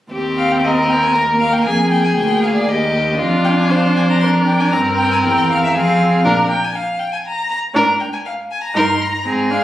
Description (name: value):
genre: quick classical-period movement for string quartet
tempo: 118 BPM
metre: 3/4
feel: rubato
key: Eb major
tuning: A4 = 440 Hz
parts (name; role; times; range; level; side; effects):
- rich violin; second line; 0.1-9.6 s; F4 to C5; -18 LUFS; left 1 dB; none
- warm viola; accompaniment; 0.1-9.6 s; Bb3 to Eb4; -20 LUFS; right 1 dB; none
- rich cello; bass; 0.1-9.6 s; D2 to Bb2; -19 LUFS; right 1 dB; none
- rich violin; melody; 0.4-9.6 s; D5 to C6; -20 LUFS; left 2 dB; none
room: wet recital hall reverb, RT60 1.3 s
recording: recorded on a phone in the room, club reverb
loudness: -13 LUFS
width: side -13 dB against mid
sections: 0.1-9.6 A section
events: none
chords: 0.1 Eb; 1.7 Bb7/F; 2.7 Eb; 3.2 F5; 4.7 C7/G; 5.7 Fm; 6.3 Bb; 7.7 Bb7/Ab; 8.8 Eb/G